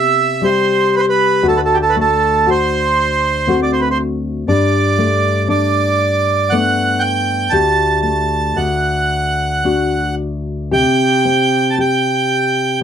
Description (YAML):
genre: celtic folk, Celtic slow air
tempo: 58 BPM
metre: 3/4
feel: uneven beats, rubato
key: unclear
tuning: A4 = 441 Hz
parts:
  - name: accordion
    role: melody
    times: 0.0-12.8 s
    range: G4 to A5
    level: -15 LUFS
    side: right 4 dB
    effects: none
  - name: nylon-string guitar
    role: accompaniment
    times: 0.0-12.8 s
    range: D2 to G4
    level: -16 LUFS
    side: left 3 dB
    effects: none
room: light reverb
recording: dry, close 1970s-style studio recording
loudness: -13 LUFS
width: side -8 dB against mid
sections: 0.0-12.8 A section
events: none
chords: 0.0 Cmaj7; 1.4 D7; 4.5 Gadd9; 7.5 Dsus4; 8.6 D; 10.7 C5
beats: 0.41 | 1.44 2.46 3.47 | 4.47 5.48 6.50 | 7.52 8.56 9.64 | 10.73 11.79 12.83